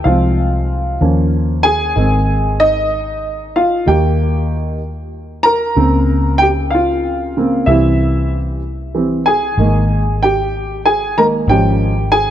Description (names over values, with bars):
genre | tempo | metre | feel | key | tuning
six-eight pop ballad | 63 BPM (dotted quarters) | 6/8 | straight | unclear | A4 = 440 Hz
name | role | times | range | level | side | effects
warm upright piano | accompaniment | 0.0-12.3 s | Db3 to Bb5 | -14 LUFS | right 1 dB | none
vintage muted fingered electric bass | bass | 0.1-12.3 s | Ab1 to Eb2 | -17 LUFS | equal | none
room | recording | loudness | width
moderate plate reverb, RT60 3.5 s | none | -12 LUFS | side -10 dB against mid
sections
0.0-2.0 A section; 2.0-12.3 B section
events
upright piano solo 0.0-2.0, 2.0-12.3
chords
0.1 Fm/C; 1.0 Eb5; 2.0 Ab; 3.9 Eb; 5.8 Bbmadd9/Db; 7.7 C; 9.6 Absus2; 11.5 Db/Ab